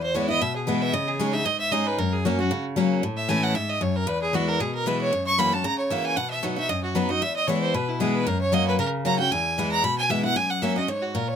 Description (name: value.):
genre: bluegrass.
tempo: 229 BPM.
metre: 4/4.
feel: swing 53% on 8ths.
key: unclear.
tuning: A4 = 439 Hz.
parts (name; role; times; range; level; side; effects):
clear fiddle; melody; 0.0-11.4 s; E4 to C#6; -25 LUFS; right 1 dB; none.
picked steel-string acoustic guitar; accompaniment; 0.0-11.4 s; E2 to G#4; -24 LUFS; left 2 dB; none.
room: light reverb.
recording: close, detailed microphones.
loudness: -22 LUFS.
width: side -8 dB against mid.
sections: 0.0-11.4 A section.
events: none.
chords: 0.0 E; 0.9 C#sus2; 2.0 F#; 3.0 A; 4.1 E; 5.1 F#7; 6.2 B; 7.2 E; 8.3 F#; 9.3 E; 10.4 F#.